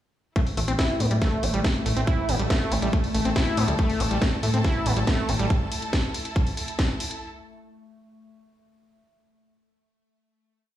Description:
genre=psychedelic trance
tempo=140 BPM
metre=4/4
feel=straight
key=unclear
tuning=A4 = 440 Hz
part: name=evolving wavetable pad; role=sustained chords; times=0.5-5.5 s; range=A3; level=-33 LUFS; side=equal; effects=chorus, built-in reverb, vintage 12-bit sampler grit, sidechain pumping
part: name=overdriven acid bass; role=riff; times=0.4-5.5 s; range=G3 to E4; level=-28 LUFS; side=moving between left 4 dB and right 4 dB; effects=distortion, auto-pan, sidechain pumping, dub echo
part: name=electronic kick drum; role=drums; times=0.4-6.9 s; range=none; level=-23 LUFS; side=equal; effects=none
part: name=garage drum kit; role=drums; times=0.4-7.2 s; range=hi-hat, snare drum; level=-30 LUFS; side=left 1 dB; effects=none
part: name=clear studio string section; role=texture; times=0.4-7.2 s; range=E4 to A5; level=-36 LUFS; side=equal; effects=sidechain pumping
part: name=fat analog bass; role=bass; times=0.6-5.5 s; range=A1 to A2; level=-24 LUFS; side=equal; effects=tube saturation
room=light reverb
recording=played on a big sound system in a bare room, large studio reverb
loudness=-22 LUFS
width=side -12 dB against mid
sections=0.4-7.2 groove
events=fade-in on string section 0.4-7.2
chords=0.4 A5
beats=| 0.36 0.79 1.22 1.65 | 2.07 2.50 2.93 3.36 | 3.79 4.22 4.64 5.07 | 5.50 5.93 6.36 6.79

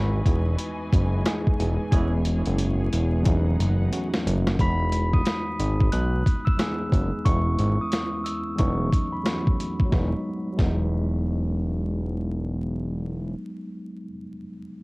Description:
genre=hip hop, boom-bap hip-hop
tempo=90 BPM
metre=4/4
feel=swing 63% on 16ths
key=E major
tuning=A4 = 440 Hz
part: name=tine electric piano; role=accompaniment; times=0.0-14.8 s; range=E2 to G#4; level=-29 LUFS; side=equal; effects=overdrive, fast stereo tremolo, high-pass filter, low-pass filter, cassette tape
part: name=rich studio string section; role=sustained chords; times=0.0-4.6 s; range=E3 to G#5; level=-38 LUFS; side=left 1 dB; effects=high-pass filter, low-pass filter, cassette tape
part: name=fat analog bass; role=bass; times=0.0-13.4 s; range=E1 to B1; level=-24 LUFS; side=equal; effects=tube saturation
part: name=boom bap sampler-style drum kit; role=drums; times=0.3-10.8 s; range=hi-hat, kick drum, snare drum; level=-23 LUFS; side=equal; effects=cassette tape
part: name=warm horn section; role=stabs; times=1.9-2.1 s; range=E3 to G#4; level=-39 LUFS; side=right 4 dB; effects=high-pass filter, low-pass filter, cassette tape, tape echo
part: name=glockenspiel with hard plastic mallets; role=melody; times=4.6-11.9 s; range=B5 to F#7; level=-32 LUFS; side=equal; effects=high-pass filter, low-pass filter, cassette tape
room=little or no reverb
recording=home recording on cassette, vinyl crackle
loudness=-22 LUFS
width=side -26 dB against mid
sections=0.0-4.6 A section; 4.6-9.9 B section; 9.9-12.6 C section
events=drum fill 1.9-4.6; filter sweep 4.6-9.9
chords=0.0 Emaj7; 1.9 E69; 3.3 B7/E; 4.6 Emaj7; 7.3 E6; 8.6 B7/E; 9.9 Emaj7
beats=0.59 1.26 | 1.92 2.59 3.26 3.92 | 4.59 5.26 5.92 6.59 | 7.26 7.92 8.59 9.26 | 9.92 10.59 11.26 11.92

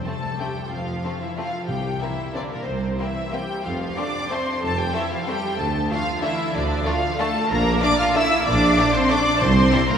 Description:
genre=classical, orchestral ballroom waltz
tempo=186 BPM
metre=3/4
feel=uneven beats, rubato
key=F major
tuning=A4 = 442 Hz
part: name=rich symphonic violin section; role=melody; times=0.0-10.0 s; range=Bb4 to F6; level=-26 LUFS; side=left 3 dB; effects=none
part: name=rich symphonic viola section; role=accompaniment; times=0.0-10.0 s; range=Bb3 to F5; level=-27 LUFS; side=right 2 dB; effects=none
part: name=rich symphonic cello section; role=bass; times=0.0-10.0 s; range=Bb2 to F4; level=-26 LUFS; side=equal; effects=none
part: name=timpani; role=percussion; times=0.0-2.1, 9.4-9.9 s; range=F2 to C3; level=-32 LUFS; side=left 4 dB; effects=none
part: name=rich studio violin section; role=second line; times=0.1-9.8 s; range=G3 to E4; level=-30 LUFS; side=left 1 dB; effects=none
part: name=mellow tuba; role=bass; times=0.7-9.7 s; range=F1 to D2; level=-30 LUFS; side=right 1 dB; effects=none
part: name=rich symphonic double bass section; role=bass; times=0.7-9.7 s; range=Bb1 to F2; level=-27 LUFS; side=right 2 dB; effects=none
room=wet church reverb, RT60 3.4 s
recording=recorded in a church or concert hall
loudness=-19 LUFS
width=side -8 dB against mid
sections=0.0-10.0 A section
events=none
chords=0.0 F; 1.7 C7; 3.6 F; 5.6 Dm; 7.5 Bb; 9.4 N.C.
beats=0.05 0.39 | 0.71 1.03 1.37 | 1.69 2.01 2.35 | 2.67 2.99 3.33 | 3.65 3.97 4.31 | 4.63 4.95 5.28 | 5.60 5.91 6.24 | 6.55 6.86 7.19 | 7.50 7.82 8.15 | 8.47 8.78 9.11 | 9.42 9.73

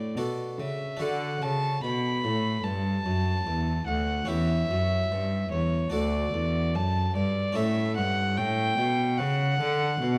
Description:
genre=classical, baroque-style sonata movement with continuo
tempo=73 BPM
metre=4/4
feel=straight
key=D major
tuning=A4 = 440 Hz
part: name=warm violin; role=melody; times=0.0-10.2 s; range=C#5 to B5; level=-32 LUFS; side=equal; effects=none
part: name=harpsichord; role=accompaniment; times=0.0-10.2 s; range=D2 to A4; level=-34 LUFS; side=equal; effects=none
part: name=rich cello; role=bass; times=0.0-10.2 s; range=D2 to D3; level=-30 LUFS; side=equal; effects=none
room=moderate scoring stage reverb, RT60 1.6 s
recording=close, detailed microphones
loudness=-27 LUFS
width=mono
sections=0.0-1.0 A section; 1.0-10.2 B section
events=none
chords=0.0 D; 4.3 C#dim/E; 5.9 D; 7.6 A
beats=0.17 | 1.01 1.83 2.65 3.47 | 4.29 5.11 5.94 6.76 | 7.57 8.38 9.19 10.01

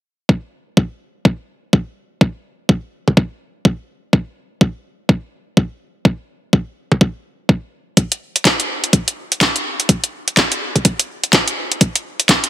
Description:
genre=house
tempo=125 BPM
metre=4/4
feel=swing 61% on 16ths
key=none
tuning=none
part: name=electronic kick drum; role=drums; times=0.3-12.4 s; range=none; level=-12 LUFS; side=equal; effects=high-pass filter on kick
part: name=garage drum kit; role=drums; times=8.0-12.5 s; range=handclaps, hi-hat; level=-14 LUFS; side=equal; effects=none
room=light reverb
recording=dense, heavily limited modern master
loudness=-15 LUFS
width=side -14 dB against mid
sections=0.3-12.5 A section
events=none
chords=none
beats=| 0.29 0.77 1.25 1.73 | 2.21 2.69 3.17 3.65 | 4.13 4.61 5.09 5.57 | 6.05 6.53 7.01 7.49 | 7.97 8.45 8.93 9.41 | 9.89 10.37 10.85 11.33 | 11.81 12.29

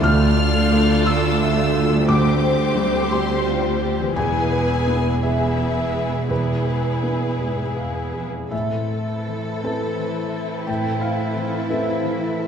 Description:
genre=cinematic, emotional film score for orchestra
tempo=53-59 BPM (dotted quarters)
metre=6/8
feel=rubato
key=A minor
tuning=A4 = 440 Hz
part: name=warm studio violin section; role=melody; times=0.0-12.5 s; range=B4 to F6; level=-30 LUFS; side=left 2 dB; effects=none
part: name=warm studio violin section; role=second line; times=0.0-12.5 s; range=E4 to C5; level=-27 LUFS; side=left 3 dB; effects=none
part: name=felt-muted upright piano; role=accompaniment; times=0.0-12.5 s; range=D2 to F6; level=-23 LUFS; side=left 1 dB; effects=none
part: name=rich studio viola section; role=accompaniment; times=0.0-12.5 s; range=E3 to E4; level=-28 LUFS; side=equal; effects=none
part: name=concert harp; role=arpeggios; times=0.0-12.5 s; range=A2 to D5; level=-28 LUFS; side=left 2 dB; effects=none
part: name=rich studio cello section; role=bass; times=0.0-12.5 s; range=D2 to A4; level=-27 LUFS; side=right 2 dB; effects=none
part: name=rich studio double bass section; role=bass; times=0.0-8.3 s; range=E1 to D2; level=-24 LUFS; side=right 3 dB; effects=none
room=wet scoring stage reverb, RT60 1.4 s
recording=heard from further back in the room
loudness=-18 LUFS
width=side -7 dB against mid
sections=0.0-8.5 A section; 8.5-12.5 B section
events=none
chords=0.0 Dm; 2.1 Gsus4/D; 4.2 E; 8.5 Amadd9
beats=| 0.02 1.06 | 2.08 3.11 | 4.16 5.22 | 6.30 7.41 | 8.52 9.64 | 10.68 11.70

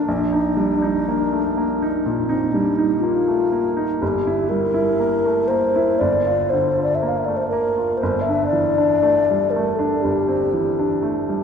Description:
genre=classical, impressionist duo for alto flute and grand piano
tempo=60 BPM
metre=4/4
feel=rubato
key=unclear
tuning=A4 = 442 Hz
part: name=mellow wooden-headed alto flute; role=melody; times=0.0-11.0 s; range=C4 to F5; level=-19 LUFS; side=left 2 dB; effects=none
part: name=clear baby grand piano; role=accompaniment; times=0.0-11.4 s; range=G1 to F4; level=-21 LUFS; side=right 2 dB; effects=none
room=wet church reverb, RT60 2.6 s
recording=recorded in a church or concert hall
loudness=-17 LUFS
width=side -6 dB against mid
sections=0.0-11.4 A section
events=none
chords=0.1 Ebmaj7/Bb; 4.0 Gm6; 6.0 Bb/G; 8.0 D9sus4/G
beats=| 0.07 1.06 2.04 3.03 | 4.02 4.98 5.98 7.00 | 8.01 9.01 10.03 11.04

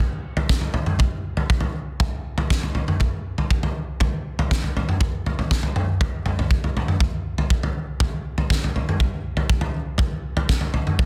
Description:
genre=rock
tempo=120 BPM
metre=4/4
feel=straight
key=none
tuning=none
part: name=loose indie drum kit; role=drums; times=0.0-11.1 s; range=kick drum, snare drum, toms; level=-23 LUFS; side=equal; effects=none
room=light reverb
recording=dense, heavily limited modern master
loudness=-23 LUFS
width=mono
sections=0.0-11.1 A section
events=none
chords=none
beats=0.00 0.50 | 1.00 1.51 2.01 2.51 | 3.01 3.51 4.01 4.51 | 5.01 5.51 6.01 6.51 | 7.01 7.51 8.01 8.51 | 9.01 9.51 10.01 10.50 | 11.00

